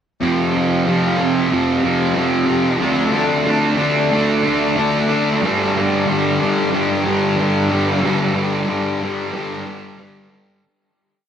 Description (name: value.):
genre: rock.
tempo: 92 BPM.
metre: 4/4.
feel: straight.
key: unclear.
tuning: A4 = 441 Hz.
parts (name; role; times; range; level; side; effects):
fuzz guitar; solo; 0.2-10.6 s; F2 to D4; -15 LUFS; equal; distortion, wide subtle chorus, analog delay.
room: wet huge ambient reverb, RT60 7.4 s.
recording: dreamy mix soaked in reverb.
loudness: -15 LUFS.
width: side -8 dB against mid.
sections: 0.2-10.6 verse.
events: fade-out 8.0-10.6.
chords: 0.2 F5; 2.8 D5; 5.4 G5.